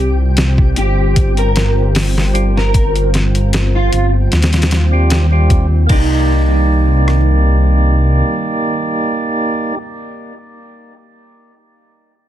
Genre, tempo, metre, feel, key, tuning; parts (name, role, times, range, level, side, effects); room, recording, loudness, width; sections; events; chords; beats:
trip hop; 76 BPM; 4/4; straight; C minor; A4 = 440 Hz
electric guitar at the edge of break-up; melody; 0.0-9.8 s; Eb4 to Bb4; -21 LUFS; right 2 dB; ensemble chorus, tape echo
dark analog pad; sustained chords; 0.0-9.8 s; Eb3 to C5; -23 LUFS; left 1 dB; chorus
dark detuned saw bass; bass; 0.0-8.2 s; G1 to Eb2; -12 LUFS; equal
flickering grainy texture; texture; 0.0-5.9 s; G5; -35 LUFS; left 1 dB; built-in reverb
boom bap sampler-style drum kit; drums; 0.4-7.3 s; crash cymbal, hi-hat, kick drum, rim click, snare drum; -16 LUFS; equal
percussive tonewheel organ; accompaniment; 2.3-9.8 s; G3 to D5; -18 LUFS; right 2 dB; overdrive, stopped rotary speaker, tremolo, tape echo
digital ambience; dense, heavily limited modern master; -11 LUFS; side -12 dB against mid
0.0-5.9 A section; 5.9-9.1 B section
0.0 Fsus2; 5.9 Cm7
0.37 1.16 1.95 | 2.74 3.53 4.32 5.11 | 5.90 6.69 7.48 8.27